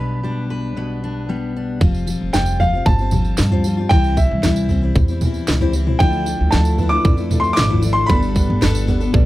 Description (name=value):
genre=indie folk with a building arrangement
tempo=115 BPM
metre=4/4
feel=straight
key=unclear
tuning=A4 = 441 Hz
part: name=clear upright piano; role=melody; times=0.0-9.1 s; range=E5 to D6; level=-22 LUFS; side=equal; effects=none
part: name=fingerpicked steel-string acoustic guitar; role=accompaniment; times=0.0-1.8 s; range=B2 to B4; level=-22 LUFS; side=left 2 dB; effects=none
part: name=upright bass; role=bass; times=0.0-9.3 s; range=F1 to G2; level=-20 LUFS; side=equal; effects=none
part: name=picked steel-string acoustic guitar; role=accompaniment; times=1.8-9.3 s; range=C3 to A4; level=-23 LUFS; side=left 5 dB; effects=none
part: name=drum and bass drum kit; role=drums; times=1.8-9.3 s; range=kick drum, snare drum, toms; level=-18 LUFS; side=right 1 dB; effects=none
part: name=tambourine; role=percussion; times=1.8-9.2 s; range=none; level=-34 LUFS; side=right 6 dB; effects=none
part: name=felt-muted upright piano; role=accompaniment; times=6.0-9.3 s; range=G1 to D5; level=-26 LUFS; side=right 5 dB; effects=none
room=little or no reverb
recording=dry, close 1970s-style studio recording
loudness=-15 LUFS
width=side -16 dB against mid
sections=0.0-1.8 A section; 1.8-9.3 B section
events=none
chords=0.0 G/B; 1.8 Fsus2; 3.9 C; 6.0 Dmadd9; 8.1 Gadd9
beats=0.24 0.77 1.29 | 1.82 2.34 2.87 3.39 | 3.91 4.44 4.96 5.48 | 6.00 6.53 7.05 7.57 | 8.10 8.62 9.14